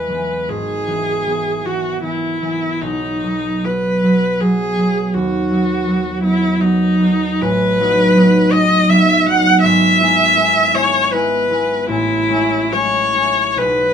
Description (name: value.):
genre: classical, romantic duo for viola and harp.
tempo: 79 BPM.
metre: 3/4.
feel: uneven beats, rubato.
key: E major.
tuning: A4 = 440 Hz.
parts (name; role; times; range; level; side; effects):
rich viola; melody; 0.0-13.9 s; D#4 to F#5; -15 LUFS; equal; none.
concert harp; accompaniment; 0.0-13.9 s; G#1 to E5; -17 LUFS; right 1 dB; none.
room: light reverb.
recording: minimal, uncompressed stereo recording.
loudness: -13 LUFS.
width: side -8 dB against mid.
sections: 0.0-13.9 A section.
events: none.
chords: 0.5 E/G#; 2.8 B; 5.1 B/D#; 7.4 B7/A; 9.6 E/G#; 11.9 Amaj7.